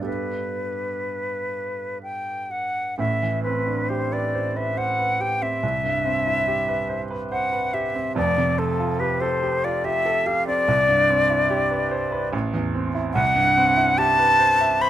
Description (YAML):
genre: classical, impressionist duo for flute and grand piano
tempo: 59-74 BPM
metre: 3/4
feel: rubato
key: unclear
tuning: A4 = 440 Hz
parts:
  - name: silver concert flute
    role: melody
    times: 0.0-14.9 s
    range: A4 to B5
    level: -21 LUFS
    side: left 1 dB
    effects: none
  - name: clear grand piano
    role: accompaniment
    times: 0.0-14.9 s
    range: F1 to E5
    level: -25 LUFS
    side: right 3 dB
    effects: none
room: light reverb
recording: close, detailed microphones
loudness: -20 LUFS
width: side -12 dB against mid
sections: 0.0-3.0 A section; 3.0-14.9 B section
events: none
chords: 0.1 Gadd9; 3.0 Am11; 5.6 Cmaj7; 8.2 Fadd9; 10.7 Cmaj9; 12.3 Am; 13.2 Cmaj7#11